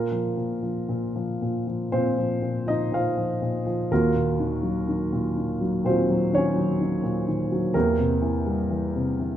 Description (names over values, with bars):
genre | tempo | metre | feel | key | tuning
classical, lyrical solo piano | 58-64 BPM | 4/4 | rubato | Bb minor | A4 = 440 Hz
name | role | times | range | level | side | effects
dark concert grand piano | solo | 0.0-9.4 s | Eb2 to F5 | -22 LUFS | equal | none
room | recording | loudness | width
moderate recital hall reverb, RT60 1.8 s | minimal, uncompressed stereo recording | -22 LUFS | side -11 dB against mid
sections
0.0-9.4 A section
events
none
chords
0.0 Bbsus2; 3.9 Ebmadd9; 7.8 C7/E